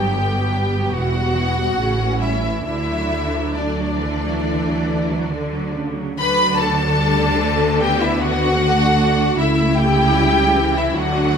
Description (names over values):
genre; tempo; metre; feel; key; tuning
classical, slow romantic movement for string orchestra; 66-78 BPM; 4/4; rubato; D major; A4 = 444 Hz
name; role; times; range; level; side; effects
warm studio violin section; melody; 0.0-11.4 s; D5 to B5; -22 LUFS; left 2 dB; none
warm studio violin section; second line; 0.0-11.4 s; D4 to B4; -22 LUFS; left 2 dB; none
rich studio viola section; accompaniment; 0.0-11.4 s; C#3 to E4; -23 LUFS; right 1 dB; none
rich studio cello section; bass; 0.0-11.4 s; E2 to F#3; -23 LUFS; right 2 dB; none
warm studio double bass section; bass; 0.0-11.4 s; E1 to D2; -24 LUFS; right 1 dB; none
room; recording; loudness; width
moderate scoring stage reverb, RT60 1.6 s; none; -16 LUFS; side -7 dB against mid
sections
0.0-6.2 A section; 6.2-11.4 A section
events
none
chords
0.0 Gmaj7; 1.0 Em; 1.8 A6; 2.7 D; 9.4 A7/C#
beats
0.16 0.96 1.79 | 2.67 3.57 4.45 5.32 | 6.20 7.01 7.82 8.60 | 9.39 10.19 10.96